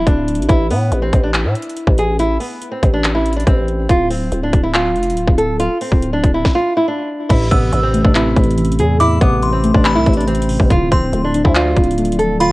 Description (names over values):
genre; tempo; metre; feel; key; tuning
hip hop, trap; 141 BPM; 4/4; half-time; A minor; A4 = 439 Hz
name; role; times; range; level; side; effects
nylon-string guitar; melody; 0.0-12.5 s; B3 to A4; -18 LUFS; equal; low-pass filter, ping-pong delay
growling 808-style bass; bass; 0.0-12.5 s; D1 to A2; -18 LUFS; equal; none
trap drum kit; drums; 0.1-12.5 s; crash cymbal, handclaps, hi-hat, kick drum, snare drum; -16 LUFS; equal; overdrive
muted felt-like synth keys; accompaniment; 7.3-12.5 s; A2 to D5; -18 LUFS; equal; chorus, low-pass filter
delicate synth tine bell; second line; 7.5-12.5 s; B5 to E6; -21 LUFS; equal; chorus, phaser, tremolo, ping-pong delay
room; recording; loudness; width
digital ambience; worn, warbling old tape, cassette tape, warbly pitch drift; -12 LUFS; side -20 dB against mid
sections
0.0-7.3 A section; 7.3-12.5 B section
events
none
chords
0.5 Am; 3.9 Dm; 7.3 Am; 10.7 Dm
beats
0.07 | 0.49 0.92 1.34 1.77 | 2.19 2.62 3.04 3.47 | 3.90 4.32 4.75 5.17 | 5.60 6.02 6.45 6.87 | 7.30 7.72 8.15 8.58 | 9.00 9.43 9.85 10.28 | 10.70 11.13 11.55 11.98 | 12.41